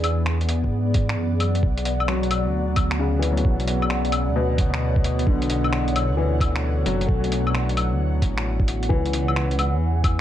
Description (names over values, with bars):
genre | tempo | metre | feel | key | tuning
future garage | 132 BPM | 4/4 | swing 66% on 16ths | B dorian | A4 = 440 Hz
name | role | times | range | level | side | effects
bright upright piano | accompaniment | 0.0-10.2 s | B2 to D4 | -27 LUFS | left 4 dB | vintage 12-bit sampler grit, sidechain pumping, tape echo
ethereal airy pad | sustained chords | 0.0-10.2 s | B2 to G#5 | -27 LUFS | right 1 dB | ensemble chorus, built-in reverb, phaser, sidechain pumping
dark detuned saw bass | bass | 0.0-10.2 s | F#1 to G#2 | -23 LUFS | equal | sidechain pumping
lo-fi sampler-style drum kit | drums | 0.0-10.2 s | claves, finger snaps, hi-hat | -28 LUFS | left 2 dB | none
electronic kick drum | drums | 0.6-10.2 s | none | -21 LUFS | equal | none
room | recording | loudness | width
light reverb | cassette tape | -20 LUFS | side -11 dB against mid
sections
0.0-1.6 A section; 1.6-10.2 B section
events
filter sweep on upright piano 0.0-1.6; kick drops out 1.2-1.6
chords
0.0 E7; 1.6 Bmadd9; 8.9 C#m